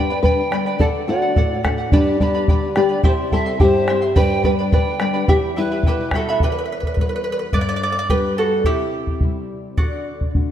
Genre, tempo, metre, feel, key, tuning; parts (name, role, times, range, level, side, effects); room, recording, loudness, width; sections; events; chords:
andean folk, Andean ensemble; 107 BPM; 2/4; straight; A4 = 438 Hz
nylon-string guitar; melody; 0.0-6.1 s; D4 to B4; -20 LUFS; left 1 dB; lush chorus, ping-pong delay
breathy polished pan flute; second line; 0.0-6.1 s; G4 to G5; -26 LUFS; right 2 dB; ping-pong delay
charango; accompaniment; 0.0-10.3 s; E4 to C6; -24 LUFS; right 2 dB
nylon-string guitar; accompaniment; 0.0-10.5 s; E2 to F#4; -25 LUFS; left 3 dB; ensemble chorus
bombo; percussion; 0.2-10.5 s; -19 LUFS; equal
moderate lush hall reverb, RT60 2.0 s, studio reverb; dreamy mix soaked in reverb; -16 LUFS; side -10 dB against mid
0.0-6.4 A section; 6.4-10.5 B section
charango solo 6.4-10.5
0.0 G; 0.8 D; 1.9 G; 3.0 C; 4.2 G; 5.3 Em; 7.5 G; 8.7 C; 9.8 D